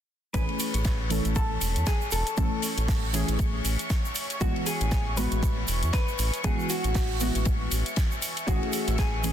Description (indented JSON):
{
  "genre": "deep house",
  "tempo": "118 BPM",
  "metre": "4/4",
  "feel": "swing 57% on 16ths",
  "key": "A major",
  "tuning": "A4 = 441 Hz",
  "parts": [
    { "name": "vintage hollow-body jazz guitar", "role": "melody", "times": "0.3-9.3 s", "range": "F#4 to B4", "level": "-34 LUFS", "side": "left 1 dB", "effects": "vintage 12-bit sampler grit, ping-pong delay" },
    { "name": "deep mellow chord stab", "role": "stabs", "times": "0.3-9.3 s", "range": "E3 to A4", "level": "-32 LUFS", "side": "equal", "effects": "chorus, sidechain pumping, ping-pong delay" },
    { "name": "round analog bass", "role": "bass", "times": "0.3-9.3 s", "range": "E1 to E2", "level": "-28 LUFS", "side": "equal", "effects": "sidechain pumping" },
    { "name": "electronic hi-hat", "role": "drums", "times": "0.3-9.3 s", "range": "none", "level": "-35 LUFS", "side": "left 1 dB", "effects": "overdrive" },
    { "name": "electronic kick drum", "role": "drums", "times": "0.3-9.1 s", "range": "none", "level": "-27 LUFS", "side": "equal", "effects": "overdrive" },
    { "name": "huge arena drum kit", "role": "drums", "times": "0.3-9.3 s", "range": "hi-hat, ride cymbal, snare drum", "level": "-36 LUFS", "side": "left 4 dB", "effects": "sidechain pumping on cymbals, high-pass filter on cymbals, sidechain pumping on hats, high-pass filter on hats, high-pass filter on snare, high-pass filter on room" },
    { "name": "tube shaker", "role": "percussion", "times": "0.3-9.3 s", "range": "none", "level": "-37 LUFS", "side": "right 7 dB", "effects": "none" },
    { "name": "analog string pad", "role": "texture", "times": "0.3-9.3 s", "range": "C#5 to C#6", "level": "-38 LUFS", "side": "right 1 dB", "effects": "ensemble chorus, sidechain pumping" },
    { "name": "warbly tape-like pad", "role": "texture", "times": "1.8-9.3 s", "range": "B4 to G#5", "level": "-46 LUFS", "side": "left 1 dB", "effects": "chorus, built-in reverb, sidechain pumping" }
  ],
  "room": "light reverb, small room ambience",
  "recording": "dense, heavily limited modern master",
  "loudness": "-24 LUFS",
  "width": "side -10 dB against mid",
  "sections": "0.3-9.3 A section",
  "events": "fade-in on ambient pad 0.3-9.3",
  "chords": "0.3 Amaj7; 4.4 Eadd9; 8.5 Amaj7"
}